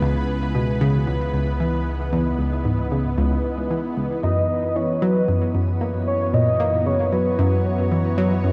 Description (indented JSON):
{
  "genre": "ambient, sequencer-driven space music",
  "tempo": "114 BPM",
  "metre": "4/4",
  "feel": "straight",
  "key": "C# dorian",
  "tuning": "A4 = 440 Hz",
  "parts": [
    { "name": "lush unison pad", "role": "sustained chords", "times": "0.0-8.5 s", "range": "E3 to C#5", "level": "-29 LUFS", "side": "equal", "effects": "chorus, shimmer reverb" },
    { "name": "analog pluck", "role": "riff", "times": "0.0-8.5 s", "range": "C#2 to A#3", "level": "-24 LUFS", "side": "equal", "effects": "chorus, tape echo" },
    { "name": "analog drone", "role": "bass", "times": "0.0-8.5 s", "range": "C#2 to F#2", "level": "-28 LUFS", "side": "equal", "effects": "chorus" },
    { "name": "wind-like tuned noise texture", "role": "texture", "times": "0.1-8.5 s", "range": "F#3 to A#5", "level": "-39 LUFS", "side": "equal", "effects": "none" },
    { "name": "pulse-width lead", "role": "melody", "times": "4.2-7.7 s", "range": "B4 to D#5", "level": "-26 LUFS", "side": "equal", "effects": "chorus, shimmer reverb, tape echo" }
  ],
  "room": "wet lush hall reverb, RT60 2.6 s",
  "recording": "dark, warm production",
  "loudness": "-21 LUFS",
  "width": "mono",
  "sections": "0.0-8.5 A section",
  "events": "none",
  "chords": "0.0 C#m7; 4.2 F#7sus4",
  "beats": "| 0.02 0.55 1.07 1.60 | 2.13 2.65 3.18 3.71 | 4.23 4.76 5.28 5.81 | 6.34 6.86 7.39 7.92 | 8.44"
}